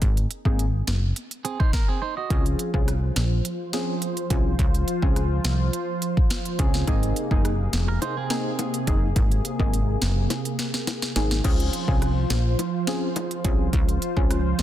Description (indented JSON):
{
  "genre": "dancehall",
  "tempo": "105 BPM",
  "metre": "4/4",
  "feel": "straight",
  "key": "Db major",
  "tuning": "A4 = 440 Hz",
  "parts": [
    { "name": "plucky analog bass", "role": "bass", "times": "0.0-14.6 s", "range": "F1 to Db2", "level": "-24 LUFS", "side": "equal", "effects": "none" },
    { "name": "afro-pop drum kit", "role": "drums", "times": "0.0-14.6 s", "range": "crash cymbal, hi-hat, kick drum, rim click, snare drum", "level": "-24 LUFS", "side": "equal", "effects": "none" },
    { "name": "deep mellow chord stab", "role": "accompaniment", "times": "0.5-14.4 s", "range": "Bb3 to Ab4", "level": "-31 LUFS", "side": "left 1 dB", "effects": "chorus" },
    { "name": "clean electric guitar", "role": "arpeggios", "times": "1.4-2.4, 7.9-9.0 s", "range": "C4 to Eb5", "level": "-30 LUFS", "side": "right 7 dB", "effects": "none" },
    { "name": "warm analog pad", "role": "sustained chords", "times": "2.3-14.6 s", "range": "C3 to C5", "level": "-29 LUFS", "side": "right 2 dB", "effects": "chorus" },
    { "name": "bongos", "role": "percussion", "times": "6.9-14.6 s", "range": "none", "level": "-35 LUFS", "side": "left 8 dB", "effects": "none" }
  ],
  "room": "little or no reverb",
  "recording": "dense, heavily limited modern master",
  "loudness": "-21 LUFS",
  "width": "side -12 dB against mid",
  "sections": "0.0-2.3 A section; 2.3-11.4 B section; 11.4-14.6 C section",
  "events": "drum fill 10.3-11.4",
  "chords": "0.0 Abadd9; 2.3 Dbmaj7; 6.9 Abadd9; 11.4 Dbmaj7"
}